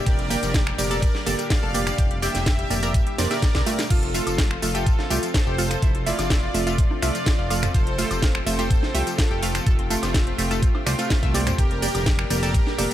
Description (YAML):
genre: progressive house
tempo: 125 BPM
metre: 4/4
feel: straight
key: F major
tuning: A4 = 442 Hz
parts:
  - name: lush unison pad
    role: sustained chords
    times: 0.0-12.9 s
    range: Bb2 to G4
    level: -33 LUFS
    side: left 1 dB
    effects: chorus, sidechain pumping
  - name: wide unison pluck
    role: stabs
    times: 0.0-12.9 s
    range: A3 to F5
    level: -29 LUFS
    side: right 3 dB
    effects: sidechain pumping, ping-pong delay
  - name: soft supersaw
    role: melody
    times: 0.1-12.9 s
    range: A3 to F5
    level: -28 LUFS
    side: right 1 dB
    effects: sidechain pumping, ping-pong delay
  - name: analog pluck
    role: arpeggios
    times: 0.1-12.9 s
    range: F3 to E5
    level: -32 LUFS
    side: left 1 dB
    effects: chorus, sidechain pumping, ping-pong delay
  - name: fat analog bass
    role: bass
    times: 0.1-12.9 s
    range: F1 to C2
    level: -27 LUFS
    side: equal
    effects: sidechain pumping
  - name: electronic kick drum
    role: drums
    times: 0.1-12.6 s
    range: none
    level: -21 LUFS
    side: equal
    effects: none
  - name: house drum kit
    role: drums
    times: 0.1-12.9 s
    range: crash cymbal, finger snaps, hi-hat, ride cymbal, snare drum, tambourine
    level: -28 LUFS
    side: equal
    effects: sidechain pumping on hats, sidechain pumping on perc, sidechain pumping on cymbals
  - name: electronic woodblock, congas and toms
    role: percussion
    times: 4.3-12.8 s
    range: none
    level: -32 LUFS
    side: right 3 dB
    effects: sidechain pumping on perc, sidechain pumping on toms
room: little or no reverb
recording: none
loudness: -19 LUFS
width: side -12 dB against mid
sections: 0.0-12.9 A section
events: drum fill 3.2-3.9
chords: 0.0 Fmaj7; 11.6 Gm/F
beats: | 0.07 0.55 1.02 1.50 | 1.99 2.46 2.94 3.42 | 3.90 4.38 4.87 5.34 | 5.83 6.30 6.79 7.26 | 7.75 8.22 8.71 9.19 | 9.66 10.14 10.62 11.11 | 11.59 12.06 12.54